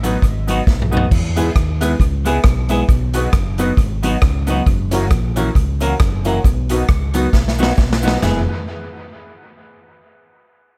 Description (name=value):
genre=ska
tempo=135 BPM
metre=4/4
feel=swing 57% on 8ths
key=E major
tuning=A4 = 440 Hz
part: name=semi-hollow electric guitar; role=accompaniment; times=0.0-8.4 s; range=E3 to G#4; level=-24 LUFS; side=equal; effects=tube saturation, phaser
part: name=warm upright piano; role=stabs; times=0.0-8.4 s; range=B3 to B4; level=-26 LUFS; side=equal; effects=dub echo
part: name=fingered electric bass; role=bass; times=0.0-8.5 s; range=E1 to E2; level=-22 LUFS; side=equal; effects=none
part: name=street-band drum kit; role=drums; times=0.0-8.3 s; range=crash cymbal, hi-hat, kick drum, rim click, snare drum, toms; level=-20 LUFS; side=equal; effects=none
part: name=cabasa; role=percussion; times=0.0-8.5 s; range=none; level=-40 LUFS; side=equal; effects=none
room=little or no reverb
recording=none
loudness=-16 LUFS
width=mono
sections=0.0-1.1 A section; 1.1-8.2 B section; 8.2-10.0 C section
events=drum fill 0.7-1.1, 7.3-8.2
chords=0.0 B; 1.1 E; 2.9 B; 4.7 F#7; 6.4 B; 8.2 E